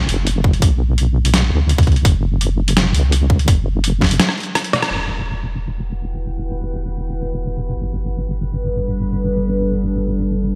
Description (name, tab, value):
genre	half-time drum and bass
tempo	168 BPM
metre	4/4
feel	half-time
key	E dorian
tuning	A4 = 435 Hz
part	deep soft wobble bass	bass	0.0-10.6 s	E1 to D2	-20 LUFS	equal	chorus
part	boom bap sampler-style drum kit	drums	0.1-4.9 s	hi-hat, rim click, snare drum	-21 LUFS	equal	small room ambience
part	electronic kick drum	drums	0.4-4.1 s	none	-16 LUFS	equal	overdrive, small room ambience
part	deep dark ambient pad	sustained chords	6.2-10.6 s	G3 to G5	-25 LUFS	equal	chorus, built-in reverb, vintage 12-bit sampler grit, sidechain pumping
room	light reverb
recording	bright 1980s-style digital production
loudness	-18 LUFS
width	mono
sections	0.0-4.9 A section; 4.9-10.6 B section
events	drum fill 4.2-4.9; band accent 4.8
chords	0.0 Bm; 2.1 F#5; 4.9 Em; 7.8 G